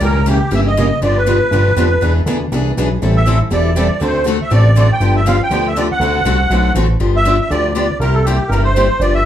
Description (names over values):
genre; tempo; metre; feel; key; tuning
acoustic string swing (jazz manouche); 240 BPM; 4/4; swing 57% on 8ths; G mixolydian; A4 = 440 Hz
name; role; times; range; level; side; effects
musette accordion; melody; 0.0-9.3 s; G4 to G5; -17 LUFS; right 1 dB; none
picked steel-string acoustic guitar; accompaniment; 0.0-9.2 s; C3 to A4; -20 LUFS; left 4 dB; none
picked steel-string acoustic guitar; accompaniment; 0.0-6.9 s; C#3 to B4; -22 LUFS; right 3 dB; none
fat analog bass; bass; 0.0-9.3 s; E1 to D2; -15 LUFS; equal; none
room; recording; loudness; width
wet club reverb, RT60 0.6 s; heard from further back in the room; -12 LUFS; side -10 dB against mid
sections
0.0-7.0 A section; 7.0-9.3 A section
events
none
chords
0.0 C#dim7; 1.0 G7; 2.0 E7; 3.0 Am7; 4.0 D7; 5.0 G7; 6.0 D7; 7.0 G7; 8.0 C7